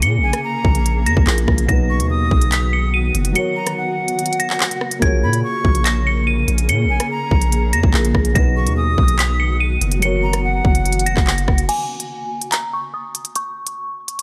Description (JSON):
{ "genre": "hip hop, drill", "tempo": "144 BPM", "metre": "4/4", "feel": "half-time", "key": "Bb phrygian", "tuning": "A4 = 440 Hz", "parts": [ { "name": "dark detuned synth bell", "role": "melody", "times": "0.0-14.2 s", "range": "Ab5 to D#7", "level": "-26 LUFS", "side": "equal", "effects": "chorus, low-pass filter, tape echo" }, { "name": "dark concert grand piano", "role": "accompaniment", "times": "0.0-11.7 s", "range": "B2 to Db5", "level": "-29 LUFS", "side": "equal", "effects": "none" }, { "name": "granular cloud pad", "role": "sustained chords", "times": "0.0-11.7 s", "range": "Db3 to Ab4", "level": "-28 LUFS", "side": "equal", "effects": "built-in reverb" }, { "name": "long sustained 808-style bass", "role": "bass", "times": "0.0-11.7 s", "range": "F1 to Bb2", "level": "-21 LUFS", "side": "equal", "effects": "none" }, { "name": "drill drum kit", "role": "drums", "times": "0.0-14.2 s", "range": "crash cymbal, handclaps, hi-hat, kick drum, rim click", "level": "-20 LUFS", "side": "equal", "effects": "none" }, { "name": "jazz flute", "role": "second line", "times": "0.2-11.6 s", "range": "Gb5 to D#6", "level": "-28 LUFS", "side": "equal", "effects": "tape echo" } ], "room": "little or no reverb", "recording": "none", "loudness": "-18 LUFS", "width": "mono", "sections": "0.0-11.7 A section; 11.7-14.2 B section", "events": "break 3.4-5.0, 11.7-14.2; filter sweep on synth bell 11.7-14.2", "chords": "0.0 Bbm7; 1.7 B; 3.4 Gb; 5.0 Bbm7; 8.4 B; 10.0 Gb; 11.7 N.C." }